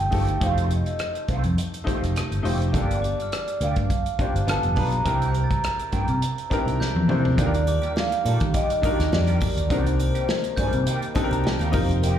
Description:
lush 1970s-style soul; 103 BPM; 4/4; swing 54% on 16ths; A4 = 437 Hz
vibraphone with soft mallets; melody; 0.0-10.8 s; C5 to Bb5; -28 LUFS; right 1 dB; slapback echo
clear grand piano; accompaniment; 0.0-12.2 s; A3 to Bb5; -29 LUFS; left 2 dB; slapback echo
fingered electric bass; bass; 0.0-12.2 s; F1 to Eb3; -23 LUFS; equal
electric guitar through a small old amp; riff; 0.1-12.2 s; Eb3 to A4; -34 LUFS; right 4 dB; wah, slapback echo
warm soul drum kit; drums; 0.1-12.2 s; hi-hat, kick drum, rim click, snare drum, toms; -27 LUFS; equal
glockenspiel with soft plastic mallets; texture; 3.0-11.2 s; D6 to A6; -40 LUFS; left 1 dB
warm French horn section; sustained chords; 7.4-12.2 s; C3 to G4; -32 LUFS; right 2 dB
triangle; percussion; 7.4-12.2 s; -44 LUFS; right 1 dB; slapback echo
studio ambience; live gig heard through the venue's PA, club reverb; -21 LUFS; side -10 dB against mid
0.0-7.4 A section; 7.4-12.2 B section
drum fill 6.8-7.4; grand piano fill 10.9-12.0
0.0 F7; 2.7 Gm7; 4.5 G7; 5.1 C7; 7.4 Ebmaj7; 9.7 Cm7

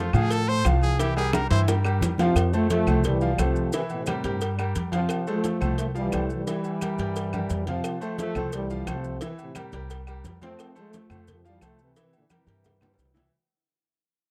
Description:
latin, salsa; 175 BPM; 4/4; straight; F major; A4 = 440 Hz
brilliant trumpet; melody; 0.0-1.6 s; F4 to C5; -31 LUFS; equal
bright baby grand piano; accompaniment; 0.0-13.3 s; E3 to F5; -34 LUFS; equal
upright bass; bass; 0.0-13.3 s; C2 to A2; -28 LUFS; equal
agogo bells and timbales; percussion; 0.1-13.3 s; -40 LUFS; equal
claves; percussion; 0.1-13.0 s; -40 LUFS; equal
congas; percussion; 0.1-13.2 s; -36 LUFS; equal
maracas; percussion; 0.1-13.3 s; -45 LUFS; equal
cowbell and bongos; percussion; 0.3-13.3 s; -36 LUFS; equal
mellow trombone section; melody; 2.2-13.1 s; A2 to C4; -30 LUFS; equal
little or no reverb; dry, close 1970s-style studio recording; -25 LUFS; mono
0.0-2.4 A section; 2.4-13.3 B section
trumpet solo 0.0-2.4; drum fill 1.3-2.4, 7.3-7.8, 12.3-13.3; fade-out 2.4-13.3
0.0 F; 1.0 C7; 2.4 F; 3.7 C7; 5.1 Fmaj7; 6.5 C7 (rootless); 7.8 Fmaj7; 9.2 C7; 10.6 Fmaj7; 12.0 C7

